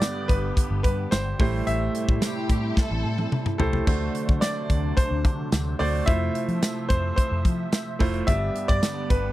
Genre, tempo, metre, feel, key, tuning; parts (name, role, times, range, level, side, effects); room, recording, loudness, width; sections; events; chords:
1980s-style pop; 109 BPM; 4/4; straight; A4 = 440 Hz
bright grand piano; melody; 0.0-9.3 s; A4 to E5; -30 LUFS; left 1 dB; slapback echo
warm concert grand piano; accompaniment; 0.0-9.3 s; G2 to D5; -30 LUFS; right 4 dB
phased analog pad; sustained chords; 0.0-9.3 s; C3 to E5; -34 LUFS; left 1 dB; phaser, chorus
modern studio drum kit; drums; 0.0-9.2 s; hi-hat, kick drum, snare drum, splash cymbal, tambourine, toms; -23 LUFS; equal
vintage muted fingered electric bass; bass; 0.3-9.3 s; F1 to F3; -27 LUFS; equal
warm studio violin section; second line; 2.2-3.5 s; G4 to A4; -34 LUFS; equal; slapback echo
little or no reverb; dry, close 1970s-style studio recording; -22 LUFS; side -15 dB against mid
0.0-9.3 A section
drum fill 2.8-3.9
0.0 G; 1.4 Am7; 3.9 D7; 6.1 Fmaj7; 8.3 G